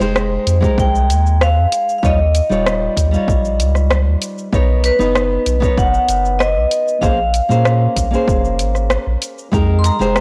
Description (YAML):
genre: sunset chillout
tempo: 96 BPM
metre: 4/4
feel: straight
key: Bb dorian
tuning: A4 = 439 Hz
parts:
  - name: vibraphone with medium hard mallets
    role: melody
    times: 0.0-10.2 s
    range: B4 to C6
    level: -21 LUFS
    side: equal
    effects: tape echo
  - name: nylon-string guitar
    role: accompaniment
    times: 0.0-10.2 s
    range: G3 to D#5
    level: -23 LUFS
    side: equal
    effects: tape echo
  - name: warm sub bass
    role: bass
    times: 0.0-10.2 s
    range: Eb1 to Bb2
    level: -19 LUFS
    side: equal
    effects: transformer saturation
  - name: deep house drum kit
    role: drums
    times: 0.0-10.2 s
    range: hi-hat, rim click, shaker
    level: -23 LUFS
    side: equal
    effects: overdrive
  - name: electronic kick drum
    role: drums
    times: 0.6-9.7 s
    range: none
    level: -20 LUFS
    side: equal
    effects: overdrive
room: digital ambience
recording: dry, gritty hardware recording, transformer saturation, cassette tape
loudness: -15 LUFS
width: mono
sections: 0.0-10.2 A section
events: none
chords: 0.0 Fm11; 2.0 Eb9; 4.5 Bmaj9; 7.0 Bbm9; 9.5 Fm11